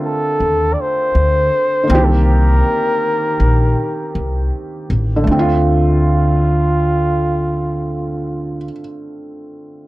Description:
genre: lo-fi hip hop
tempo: 80 BPM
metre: 4/4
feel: swing 55% on 16ths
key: D phrygian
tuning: A4 = 440 Hz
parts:
  - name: felt-muted upright piano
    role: accompaniment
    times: 0.0-9.9 s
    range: D3 to G4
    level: -20 LUFS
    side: right 1 dB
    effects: cassette tape
  - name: mellow flugelhorn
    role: melody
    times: 0.1-8.7 s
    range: F4 to D5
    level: -18 LUFS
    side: equal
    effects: tape echo
  - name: upright bass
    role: bass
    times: 0.4-8.7 s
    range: A1 to Eb2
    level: -15 LUFS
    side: equal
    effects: none
room: light reverb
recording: dark, warm production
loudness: -13 LUFS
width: side -18 dB against mid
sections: 0.0-5.3 A section; 5.3-8.3 B section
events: none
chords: 0.0 Dm7; 1.9 Cm7; 5.3 Dm7

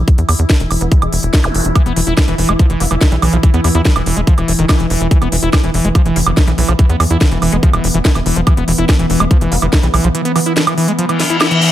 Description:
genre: psychedelic trance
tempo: 143 BPM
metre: 4/4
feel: straight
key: E major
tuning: A4 = 440 Hz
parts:
  - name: resonant blip pluck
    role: second line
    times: 0.0-10.5 s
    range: G#3 to B3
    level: -29 LUFS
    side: left 4 dB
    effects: chorus, phaser, sidechain pumping, high-pass filter, ping-pong delay
  - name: evolving wavetable pad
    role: sustained chords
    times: 0.0-11.7 s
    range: E3 to E4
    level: -20 LUFS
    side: right 1 dB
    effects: chorus, built-in reverb, sidechain pumping
  - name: tight sequencer bass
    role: bass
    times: 0.0-10.1 s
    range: E1 to E2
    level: -16 LUFS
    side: equal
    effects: none
  - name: electronic kick drum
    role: drums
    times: 0.1-9.8 s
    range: none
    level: -11 LUFS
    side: equal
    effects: none
  - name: techno drum kit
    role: drums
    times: 0.1-11.7 s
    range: hi-hat, snare drum, woodblock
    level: -18 LUFS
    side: right 1 dB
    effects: overdrive
  - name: zap and reverse cymbal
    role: sound effects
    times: 1.4-1.5, 11.1-11.7 s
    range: none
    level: -17 LUFS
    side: left 2 dB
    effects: none
  - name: screaming distorted acid line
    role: riff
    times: 1.8-11.7 s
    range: D#3 to E4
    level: -18 LUFS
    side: moving between left 4 dB and right 4 dB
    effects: distortion, chorus, auto-pan, sidechain pumping, dub echo
room: digital ambience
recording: none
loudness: -10 LUFS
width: side -12 dB against mid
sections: 0.0-11.7 A section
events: reverse cymbal 11.1-11.7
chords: 0.0 E5

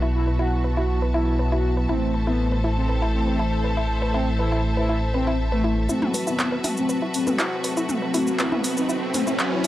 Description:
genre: melodic techno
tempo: 120 BPM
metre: 4/4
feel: straight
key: unclear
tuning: A4 = 440 Hz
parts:
  - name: deep dark ambient pad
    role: sustained chords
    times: 0.0-9.7 s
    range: C4 to C6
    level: -32 LUFS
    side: right 1 dB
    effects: chorus, built-in reverb
  - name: woody wave-folded pluck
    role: arpeggios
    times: 0.0-9.7 s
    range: E4 to B4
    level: -30 LUFS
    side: equal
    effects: chorus, tape echo
  - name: brassy analog pad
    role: stabs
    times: 0.0-9.7 s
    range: A2 to F#4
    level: -28 LUFS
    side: equal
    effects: chorus, tape echo
  - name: dark detuned saw bass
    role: bass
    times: 0.0-5.9 s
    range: A1 to B1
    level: -24 LUFS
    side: equal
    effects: none
  - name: bright studio string section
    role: texture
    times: 0.0-9.7 s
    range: F#4 to A5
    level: -31 LUFS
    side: left 1 dB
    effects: none
  - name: analog synth brass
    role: melody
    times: 0.1-9.7 s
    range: D#3 to F#4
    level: -28 LUFS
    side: left 1 dB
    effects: chorus, tape echo
  - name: deep house drum kit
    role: drums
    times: 5.9-9.7 s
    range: handclaps, hi-hat, shaker, toms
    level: -26 LUFS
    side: equal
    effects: overdrive, small room ambience
  - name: riser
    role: sound effects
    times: 7.5-9.7 s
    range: none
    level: -30 LUFS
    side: right 2 dB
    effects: none
room: light reverb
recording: dry, gritty hardware recording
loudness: -20 LUFS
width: side -14 dB against mid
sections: 0.0-5.9 A section; 5.9-9.7 B section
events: build-up 5.9-9.7; filter sweep on synth pluck 5.9-9.7; riser 7.5-9.7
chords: 0.0 Bsus4; 1.9 Am; 5.9 F#dim

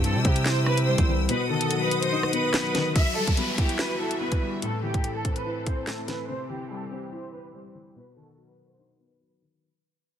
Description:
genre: hip hop, drill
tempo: 144 BPM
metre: 4/4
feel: half-time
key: E harmonic minor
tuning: A4 = 440 Hz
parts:
  - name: warm studio violin section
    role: melody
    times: 0.0-9.6 s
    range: G4 to E5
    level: -30 LUFS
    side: right 2 dB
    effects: low-pass filter, digital delay
  - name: dark concert grand piano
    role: accompaniment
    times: 0.0-9.6 s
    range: A2 to F#4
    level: -29 LUFS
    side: left 3 dB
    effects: low-pass filter
  - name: clear symphonic string section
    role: sustained chords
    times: 0.0-9.6 s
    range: B2 to E6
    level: -34 LUFS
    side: equal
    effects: low-pass filter
  - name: distorted 808-style bass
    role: bass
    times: 0.0-1.3 s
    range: C2 to C3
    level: -24 LUFS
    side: equal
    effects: distortion
  - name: drill drum kit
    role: drums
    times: 0.0-6.2 s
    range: handclaps, hi-hat, kick drum, rim click, snare drum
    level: -26 LUFS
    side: equal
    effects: none
  - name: downlifter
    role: sound effects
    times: 3.0-6.3 s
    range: none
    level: -34 LUFS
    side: left 1 dB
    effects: none
room: light reverb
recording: dense, heavily limited modern master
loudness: -23 LUFS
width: side -9 dB against mid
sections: 0.0-3.0 A section; 3.0-9.6 B section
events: break 1.3-3.0; fade-out 3.0-9.6; filter sweep 3.0-9.6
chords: 0.0 C; 1.3 B; 3.0 Emadd9; 4.6 Am; 6.3 C; 8.0 B

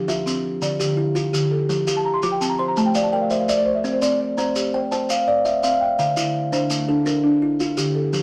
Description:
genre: southern african traditional, mbira-style interlocking cycle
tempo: 112 BPM (dotted quarters)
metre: 12/8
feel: straight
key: unclear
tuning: A4 = 440 Hz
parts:
  - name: buzzing marimba with soft mallets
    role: arpeggios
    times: 0.0-8.2 s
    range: D3 to D6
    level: -26 LUFS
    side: equal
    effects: none
  - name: kalimba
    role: arpeggios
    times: 0.0-8.2 s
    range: D3 to G5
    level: -23 LUFS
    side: equal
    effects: none
  - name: maracas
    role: percussion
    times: 0.1-8.2 s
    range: none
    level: -32 LUFS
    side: equal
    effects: none
room: moderate studio reverb, RT60 0.7 s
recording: none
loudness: -21 LUFS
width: mono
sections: 0.0-8.1 A section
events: marimba fill 1.8-3.8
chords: 0.0 F5; 0.6 Dm; 1.7 F; 2.8 Am; 3.8 C; 6.0 Dm

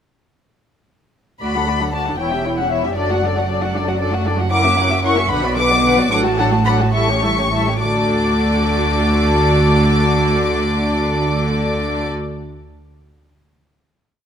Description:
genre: quick classical-period movement for string orchestra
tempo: 66-78 BPM (dotted quarters)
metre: 6/8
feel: straight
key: D major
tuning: A4 = 440 Hz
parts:
  - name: dark chamber violin section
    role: melody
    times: 1.4-12.1 s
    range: D5 to D6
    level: -21 LUFS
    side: left 3 dB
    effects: none
  - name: warm symphonic violin section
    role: second line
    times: 1.4-12.1 s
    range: E4 to A5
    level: -21 LUFS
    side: left 2 dB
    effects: none
  - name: warm chamber viola section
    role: accompaniment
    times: 1.4-12.1 s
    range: D3 to F#4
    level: -20 LUFS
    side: equal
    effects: none
  - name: dark studio double bass section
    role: bass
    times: 1.4-12.1 s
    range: E1 to D2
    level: -23 LUFS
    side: right 3 dB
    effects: none
  - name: warm symphonic cello section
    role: bass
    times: 1.4-12.1 s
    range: D2 to D3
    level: -23 LUFS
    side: right 2 dB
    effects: none
room: light reverb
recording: close, detailed microphones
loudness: -14 LUFS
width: side -8 dB against mid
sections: 1.4-7.8 A section; 7.8-11.3 final chord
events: slowing down 3.7-7.8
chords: 1.4 D; 2.2 C#dim/E; 3.0 D/F#; 4.5 F#7; 5.3 Bm; 6.1 D/A; 6.9 A7; 7.8 D

